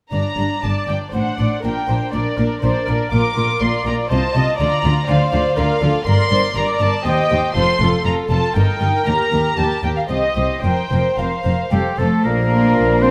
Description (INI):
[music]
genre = quick classical-period movement for symphony orchestra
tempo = 120 BPM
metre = 3/4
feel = rubato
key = G minor, Bb major from 6.1 s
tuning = A4 = 440 Hz
[part]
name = warm studio violin section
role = melody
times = 0.1-13.1 s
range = D5 to D6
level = -25 LUFS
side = equal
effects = none
[part]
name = warm chamber violin section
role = second line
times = 0.1-13.1 s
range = D4 to Eb5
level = -27 LUFS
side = equal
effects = none
[part]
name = rich studio cello section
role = bass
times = 0.1-13.1 s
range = C2 to C4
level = -23 LUFS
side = equal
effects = none
[part]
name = warm studio double bass section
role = bass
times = 0.1-13.1 s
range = F1 to Eb2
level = -24 LUFS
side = equal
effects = none
[part]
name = dark studio viola section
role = accompaniment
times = 0.6-13.1 s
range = G4 to Eb5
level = -25 LUFS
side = equal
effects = none
[part]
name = mellow hollow silver concert flute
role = second line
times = 11.7-13.1 s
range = G5 to C6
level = -27 LUFS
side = equal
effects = none
[part]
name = warm oboe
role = second line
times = 11.7-13.1 s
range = G4 to C5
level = -26 LUFS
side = equal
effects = none
[part]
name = mellow French horn section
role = sustained chords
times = 12.2-13.1 s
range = D4 to Bb4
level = -24 LUFS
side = equal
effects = none
[part]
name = mellow clarinet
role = second line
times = 12.3-13.1 s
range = D5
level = -29 LUFS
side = equal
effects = none
[part]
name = warm bassoon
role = accompaniment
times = 12.3-13.1 s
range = F3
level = -24 LUFS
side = equal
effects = none
[sound]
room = light reverb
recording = close, detailed microphones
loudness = -18 LUFS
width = mono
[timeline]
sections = 0.1-12.3 A section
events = none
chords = 0.1 Gm; 1.1 D7/A; 1.6 Gm/Bb; 3.1 Bb; 4.1 F7/C; 4.6 Bb/D; 6.1 Gm; 7.1 Cm/Eb; 7.6 F; 8.6 Eb/G; 9.1 Eb; 10.1 Cm; 10.6 Fsus4; 11.7 F; 12.3 Bb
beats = | 0.12 0.63 1.13 | 1.64 2.13 2.63 | 3.12 3.61 4.11 | 4.60 5.08 5.58 | 6.07 6.56 7.06 | 7.55 8.05 8.56 | 9.07 9.58 10.10 | 10.63 11.18 11.72 | 12.26 12.77